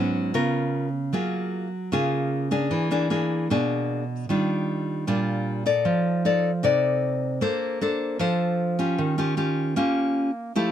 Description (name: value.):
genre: bossa nova.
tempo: 153 BPM.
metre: 4/4.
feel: straight.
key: unclear.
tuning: A4 = 439 Hz.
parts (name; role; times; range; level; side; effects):
nylon-string guitar; solo; 0.0-10.7 s; Ab2 to D5; -22 LUFS; equal; none.
room: little or no reverb.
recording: close, detailed microphones.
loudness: -22 LUFS.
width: side -10 dB against mid.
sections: 0.0-10.7 A section.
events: none.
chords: 0.4 Db6; 1.1 Gbmaj9; 2.7 E7#11; 4.3 Ebmaj9; 5.8 F6; 7.4 Bbmaj9; 9.0 Eb9.